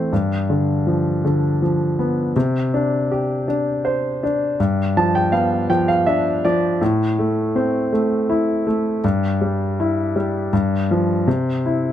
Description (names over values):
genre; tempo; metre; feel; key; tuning
folk; 81 BPM; 3/4; straight; C major; A4 = 437 Hz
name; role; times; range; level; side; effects
warm grand piano; solo; 0.0-11.9 s; G2 to A5; -17 LUFS; left 1 dB; none
room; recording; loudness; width
light reverb; none; -17 LUFS; side -11 dB against mid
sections
0.0-2.3 A section; 2.3-11.9 B section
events
none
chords
0.1 G7; 2.3 Csus2; 4.6 G7; 6.8 Am; 9.0 Em/G; 10.5 Fsus2/G; 11.3 C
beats
| 0.11 0.86 1.60 | 2.35 3.10 3.84 | 4.58 5.33 6.07 | 6.81 7.55 8.29 | 9.03 9.78 10.52 | 11.26